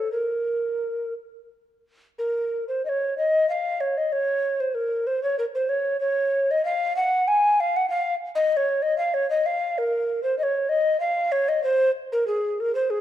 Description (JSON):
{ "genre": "classical, baroque-style fantasia for unaccompanied recorder", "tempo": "56-66 BPM (dotted quarters)", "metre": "6/8", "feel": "rubato", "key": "Bb minor, Db major from 9.8 s", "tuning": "A4 = 440 Hz", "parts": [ { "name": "mellow hollow tenor recorder", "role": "solo", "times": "0.0-13.0 s", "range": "Ab4 to Ab5", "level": "-21 LUFS", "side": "equal", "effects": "none" } ], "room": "moderate recital hall reverb, RT60 1.6 s", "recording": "dark, warm production", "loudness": "-21 LUFS", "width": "side -11 dB against mid", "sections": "0.0-2.2 A section; 2.2-13.0 B section", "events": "none", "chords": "none", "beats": "| 0.11 1.15 | 2.19 3.17 | 4.12 5.07 | 6.02 6.97 | 7.90 8.82 | 9.77 10.69 | 11.63 12.58" }